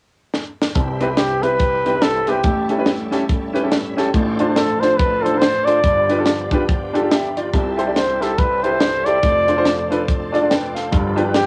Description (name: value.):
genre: uptempo gospel.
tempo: 142 BPM.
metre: 4/4.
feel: swing 60% on 8ths.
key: C major.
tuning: A4 = 442 Hz.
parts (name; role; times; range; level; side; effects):
tight funk drum kit; drums; 0.3-11.5 s; hi-hat, kick drum, snare drum; -22 LUFS; equal; cassette tape.
warm baby grand piano; accompaniment; 0.8-11.5 s; F1 to G5; -22 LUFS; equal; cassette tape, plate reverb.
bright tonewheel organ; sustained chords; 0.8-11.5 s; A2 to G5; -32 LUFS; equal; slow rotary speaker, chorus vibrato, cassette tape, plate reverb.
dark French horn section; sustained chords; 0.8-11.5 s; A2 to B4; -34 LUFS; equal; none.
breathy trumpet; melody; 1.2-11.5 s; G4 to D5; -21 LUFS; equal; cassette tape, plate reverb, tape echo.
room: wet booth ambience, RT60 0.2 s.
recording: home recording on cassette.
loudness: -18 LUFS.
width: mono.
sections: 0.8-11.5 A section.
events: drum fill 0.3-0.8; tonewheel organ fill 3.3-4.1, 10.3-10.9.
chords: 0.0 N.C.; 0.8 Cmaj7; 2.5 A7; 4.1 Dm7/A; 5.8 G7; 7.5 C6; 9.2 F6; 10.9 G7.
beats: 0.34 | 0.76 1.18 1.60 2.03 | 2.45 2.87 3.30 3.72 | 4.14 4.57 4.99 5.42 | 5.84 6.26 6.69 7.11 | 7.54 7.96 8.38 8.81 | 9.23 9.66 10.08 10.50 | 10.93 11.35.